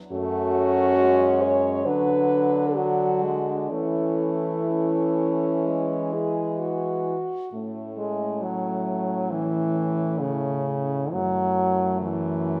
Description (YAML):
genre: classical, lyrical piece for horn quartet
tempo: 60-70 BPM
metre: 4/4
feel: rubato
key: A major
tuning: A4 = 440 Hz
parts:
  - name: mellow French horn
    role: melody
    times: 0.1-12.6 s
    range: C#4 to C#5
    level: -30 LUFS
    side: equal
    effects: none
  - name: warm French horn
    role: second line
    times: 0.1-12.6 s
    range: A3 to G#4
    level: -31 LUFS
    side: equal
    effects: none
  - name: warm French horn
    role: accompaniment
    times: 0.1-12.6 s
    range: C#3 to A3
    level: -29 LUFS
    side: equal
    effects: none
  - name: warm French horn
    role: bass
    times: 0.1-12.6 s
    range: F#2 to E3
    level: -31 LUFS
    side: equal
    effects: none
room: wet recital hall reverb, RT60 1.3 s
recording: recorded in a church or concert hall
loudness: -24 LUFS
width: mono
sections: 0.0-7.5 A section; 7.5-12.6 B section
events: none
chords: 0.1 F#m; 1.9 Bm/D; 3.7 A/E; 5.7 E; 7.5 A; 11.1 F#m7